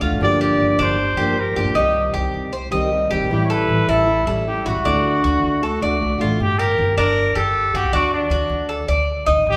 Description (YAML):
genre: latin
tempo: 156 BPM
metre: 4/4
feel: straight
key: G minor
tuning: A4 = 439 Hz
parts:
  - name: picked plugged-in steel-string acoustic guitar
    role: accompaniment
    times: 0.0-6.4 s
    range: C3 to G4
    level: -24 LUFS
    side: equal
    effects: none
  - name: Cuban tres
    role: arpeggios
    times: 0.0-9.6 s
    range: D4 to Eb5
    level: -24 LUFS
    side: equal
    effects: none
  - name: upright bass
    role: bass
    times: 0.0-9.6 s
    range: G1 to D2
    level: -26 LUFS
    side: equal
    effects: none
  - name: warm trumpet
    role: melody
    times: 0.2-9.6 s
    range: D4 to D5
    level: -24 LUFS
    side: equal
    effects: none
room: wet large studio reverb, RT60 1.5 s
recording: band playing live in one room, faint mains hum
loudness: -19 LUFS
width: mono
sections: 0.0-6.4 A section; 6.4-9.6 A section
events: none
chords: 0.2 Gm7; 1.8 Cm; 3.3 A7; 4.8 D; 6.4 Gm; 7.9 D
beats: | 0.21 0.59 0.98 1.37 | 1.76 2.14 2.53 2.92 | 3.30 3.69 4.08 4.46 | 4.85 5.23 5.62 6.00 | 6.39 6.78 7.16 7.54 | 7.93 8.31 8.70 9.08 | 9.47